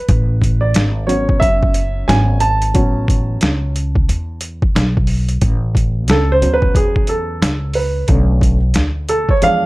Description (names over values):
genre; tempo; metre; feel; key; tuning
hip hop, jazz-hop; 90 BPM; 4/4; swing 64% on 16ths; A major; A4 = 440 Hz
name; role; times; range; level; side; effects
dark baby grand piano; accompaniment; 0.0-9.7 s; D3 to A5; -17 LUFS; right 1 dB; plate reverb
upright bass; bass; 0.1-9.7 s; F#1 to E2; -17 LUFS; equal; none
boom bap sampler-style drum kit; drums; 0.1-9.6 s; hi-hat, kick drum, snare drum; -16 LUFS; equal; overdrive
room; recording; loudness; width
light reverb; dark, warm production; -13 LUFS; side -20 dB against mid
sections
0.0-5.4 A section; 5.4-9.7 B section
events
grand piano solo 0.0-5.4, 5.4-9.7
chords
0.1 A69; 8.1 Bm9